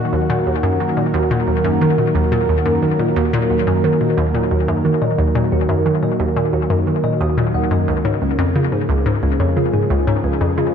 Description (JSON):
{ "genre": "ambient, sequencer-driven space music", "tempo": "89 BPM", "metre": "4/4", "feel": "straight", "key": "Eb minor", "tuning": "A4 = 440 Hz", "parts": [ { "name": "sweeping resonant pad", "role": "sustained chords", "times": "0.0-10.7 s", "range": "Db3 to Bb4", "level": "-18 LUFS", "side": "right 2 dB", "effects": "chorus" }, { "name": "thumb-piano-like synth pluck", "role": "arpeggios", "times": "0.0-10.7 s", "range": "Db4 to Eb6", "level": "-28 LUFS", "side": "moving between left 9 dB and right 1 dB", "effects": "chorus, auto-pan, ping-pong delay" }, { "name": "hollow square pluck", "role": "riff", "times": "0.0-10.6 s", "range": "Db2 to Eb3", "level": "-18 LUFS", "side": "left 1 dB", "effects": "chorus, ping-pong delay" } ], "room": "moderate plate reverb, RT60 2.9 s", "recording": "dark, warm production", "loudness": "-15 LUFS", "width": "side -7 dB against mid", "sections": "0.0-10.7 A section", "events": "fade-in on synth arpeggio sound 0.0-10.7", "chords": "0.0 Ebm; 7.9 Db" }